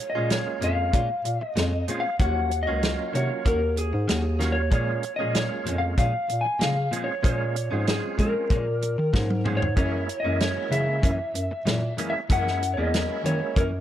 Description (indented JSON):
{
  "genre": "straight-eighth soul blues",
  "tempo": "95 BPM",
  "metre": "4/4",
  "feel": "straight",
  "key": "Bb minor",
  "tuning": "A4 = 441 Hz",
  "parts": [
    { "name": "electric slide guitar", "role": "melody", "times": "0.0-13.7 s", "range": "Ab4 to Ab5", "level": "-28 LUFS", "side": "left 1 dB", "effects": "none" },
    { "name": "percussive tonewheel organ", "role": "accompaniment", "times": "0.1-13.6 s", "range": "F3 to F4", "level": "-33 LUFS", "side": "right 6 dB", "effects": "overdrive, fast rotary speaker" },
    { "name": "breathy bass clarinet", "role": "bass", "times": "0.1-13.8 s", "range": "Db2 to Ab3", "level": "-27 LUFS", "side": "equal", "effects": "none" },
    { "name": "direct-recorded clean electric guitar", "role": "stabs", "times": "0.2-13.8 s", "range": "Gb2 to Gb4", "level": "-34 LUFS", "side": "left 4 dB", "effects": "none" },
    { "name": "warm soul drum kit", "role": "drums", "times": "0.3-13.7 s", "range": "hi-hat, kick drum, snare drum, toms", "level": "-25 LUFS", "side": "equal", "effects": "none" },
    { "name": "rich symphonic string section", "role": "sustained chords", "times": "9.8-13.6 s", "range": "Fb4 to Bb4", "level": "-41 LUFS", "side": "left 3 dB", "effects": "none" }
  ],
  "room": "small room ambience",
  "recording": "none",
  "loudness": "-22 LUFS",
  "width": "side -11 dB against mid",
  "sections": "0.0-13.8 A section",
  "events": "drum fill 9.1-9.8",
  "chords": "0.0 Bbm7; 2.2 Ebm7; 4.7 Bbm7; 9.8 Gb7"
}